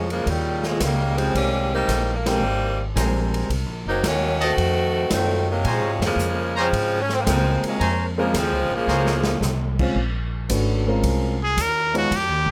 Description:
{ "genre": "jazz, big band swing", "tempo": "111 BPM", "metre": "4/4", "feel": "swing 69% on 8ths", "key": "Bb minor", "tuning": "A4 = 440 Hz", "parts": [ { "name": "bright saxophone section", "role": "melody", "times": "0.0-9.4 s", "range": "Bb2 to Gb4", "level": "-25 LUFS", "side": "equal", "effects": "none" }, { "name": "upright bass", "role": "bass", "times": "0.0-12.5 s", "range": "Gb1 to Bb2", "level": "-27 LUFS", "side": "equal", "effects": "none" }, { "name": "swinging big-band drum kit", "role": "drums", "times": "0.1-12.3 s", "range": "crash cymbal, hi-hat, kick drum, ride cymbal, snare drum", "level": "-31 LUFS", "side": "equal", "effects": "none" }, { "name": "warm concert grand piano", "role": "accompaniment", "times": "1.2-12.1 s", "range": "Gb3 to Db5", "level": "-28 LUFS", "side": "equal", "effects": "none" }, { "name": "bright trumpet section", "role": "stabs", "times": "3.0-9.1 s", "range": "C5 to Bb5", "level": "-27 LUFS", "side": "equal", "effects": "none" }, { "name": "trumpet with straight mute", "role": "melody", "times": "11.4-12.5 s", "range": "Gb4 to Bb4", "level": "-23 LUFS", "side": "equal", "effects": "none" } ], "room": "moderate booth ambience, RT60 0.2 s", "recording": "none", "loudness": "-22 LUFS", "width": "mono", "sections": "0.0-10.0 A section; 10.0-12.5 B section", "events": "band accent 2.2, 5.9; drum fill 8.9-9.4; muted trumpet solo 10.0-12.5", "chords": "0.3 Eb7; 1.3 Abmaj9; 3.5 Cm7b5; 4.6 F7b9; 5.7 Bbm9" }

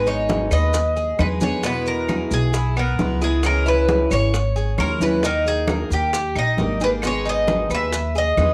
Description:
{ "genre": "latin, Cuban son and guajira", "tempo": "134 BPM", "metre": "4/4", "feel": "straight", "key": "G# minor", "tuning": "A4 = 440 Hz", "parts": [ { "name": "Cuban tres", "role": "melody", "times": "0.0-8.5 s", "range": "G4 to E5", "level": "-25 LUFS", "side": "equal", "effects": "cassette tape" }, { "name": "picked steel-string acoustic guitar", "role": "accompaniment", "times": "0.0-8.5 s", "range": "B2 to G#4", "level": "-28 LUFS", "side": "equal", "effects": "cassette tape" }, { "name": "upright bass", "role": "bass", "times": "0.0-8.5 s", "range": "G#1 to E2", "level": "-25 LUFS", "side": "equal", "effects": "none" }, { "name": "Cuban tres", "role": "arpeggios", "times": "0.1-8.5 s", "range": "B3 to C#5", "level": "-29 LUFS", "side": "equal", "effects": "cassette tape" }, { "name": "bongos", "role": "percussion", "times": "0.1-8.5 s", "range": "none", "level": "-34 LUFS", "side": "equal", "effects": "none" }, { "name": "congas", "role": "percussion", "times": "0.1-8.5 s", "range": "none", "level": "-29 LUFS", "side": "equal", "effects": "none" }, { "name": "maracas", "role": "percussion", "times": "0.1-8.5 s", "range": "none", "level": "-39 LUFS", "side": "equal", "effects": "none" }, { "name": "claves", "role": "percussion", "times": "0.5-8.5 s", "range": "none", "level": "-36 LUFS", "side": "equal", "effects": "none" } ], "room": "moderate studio reverb, RT60 0.5 s", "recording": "home recording on cassette", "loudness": "-20 LUFS", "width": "mono", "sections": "0.0-8.5 A section", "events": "none", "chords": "0.0 G#m; 1.6 E; 3.4 C#m; 5.2 D#; 7.0 G#m" }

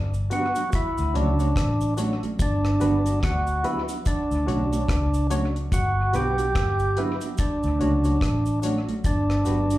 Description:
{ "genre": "roots reggae", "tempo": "72 BPM", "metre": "4/4", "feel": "swing 60% on 16ths", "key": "D major", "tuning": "A4 = 440 Hz", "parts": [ { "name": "vintage muted fingered electric bass", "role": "bass", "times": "0.0-9.8 s", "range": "G1 to D2", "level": "-24 LUFS", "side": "equal", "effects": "none" }, { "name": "cabasa", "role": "percussion", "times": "0.1-9.8 s", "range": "none", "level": "-44 LUFS", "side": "right 7 dB", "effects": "none" }, { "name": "percussive tonewheel organ", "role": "melody", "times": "0.3-9.8 s", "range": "D4 to G4", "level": "-25 LUFS", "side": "right 1 dB", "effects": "overdrive, tape echo, plate reverb, slapback echo" }, { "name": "mellow electric guitar", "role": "accompaniment", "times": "0.3-9.8 s", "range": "F#3 to F#4", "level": "-30 LUFS", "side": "right 3 dB", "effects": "wide subtle chorus, tape echo, plate reverb, slapback echo" }, { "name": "barky reed electric piano", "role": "stabs", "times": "0.3-9.6 s", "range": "D4 to C#5", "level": "-32 LUFS", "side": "left 3 dB", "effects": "overdrive, fast tremolo, plate reverb, slapback echo" }, { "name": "deep reggae drum kit", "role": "drums", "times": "0.3-9.8 s", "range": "hi-hat, kick drum, rim click", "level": "-27 LUFS", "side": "equal", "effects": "dub echo" } ], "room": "light reverb", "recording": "live gig heard through the venue's PA, club reverb", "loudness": "-21 LUFS", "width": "side -16 dB against mid", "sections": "0.0-9.8 A section", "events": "none", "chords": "0.0 Gmaj7; 0.7 Dmaj7; 2.4 Gmaj7; 4.1 Dmaj7; 5.7 Gmaj7; 7.4 Dmaj7; 9.0 Gmaj7" }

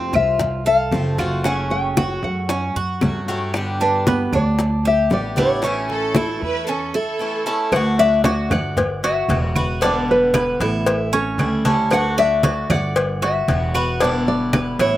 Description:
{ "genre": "latin, Cuban son and guajira", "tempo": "115 BPM", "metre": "4/4", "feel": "straight", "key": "D major", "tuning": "A4 = 438 Hz", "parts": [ { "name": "nylon-string guitar", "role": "melody", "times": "0.0-15.0 s", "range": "A4 to G5", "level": "-21 LUFS", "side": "left 2 dB", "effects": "none" }, { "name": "picked swing-style acoustic guitar", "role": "accompaniment", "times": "0.0-15.0 s", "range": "B2 to G4", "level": "-26 LUFS", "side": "left 2 dB", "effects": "slapback echo" }, { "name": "Cuban tres", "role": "arpeggios", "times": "0.0-15.0 s", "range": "B3 to D5", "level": "-24 LUFS", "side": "right 4 dB", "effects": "none" }, { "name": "upright bass", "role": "bass", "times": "0.0-15.0 s", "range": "E1 to G2", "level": "-24 LUFS", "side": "right 1 dB", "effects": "none" }, { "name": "claves", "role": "percussion", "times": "0.1-14.8 s", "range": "none", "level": "-30 LUFS", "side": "right 8 dB", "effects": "none" }, { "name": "congas", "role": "percussion", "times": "0.1-15.0 s", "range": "none", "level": "-23 LUFS", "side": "equal", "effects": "none" }, { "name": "bongos and cowbell", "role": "percussion", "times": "0.4-15.0 s", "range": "none", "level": "-25 LUFS", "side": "left 3 dB", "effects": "none" }, { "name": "rich studio violin section", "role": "second line", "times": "5.9-7.7 s", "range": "A4 to B4", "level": "-25 LUFS", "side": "right 2 dB", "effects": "slapback echo" } ], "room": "little or no reverb", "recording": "recorded outdoors, with no room sound", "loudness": "-17 LUFS", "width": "side -14 dB against mid", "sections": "0.0-7.7 A section; 7.7-15.0 B section", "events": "none", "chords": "0.0 F; 1.4 F#m; 3.5 G; 5.6 A; 7.7 D; 8.8 Gmaj7; 9.8 Em7; 10.9 A7; 11.9 D; 13.0 Gmaj7; 14.0 Em7" }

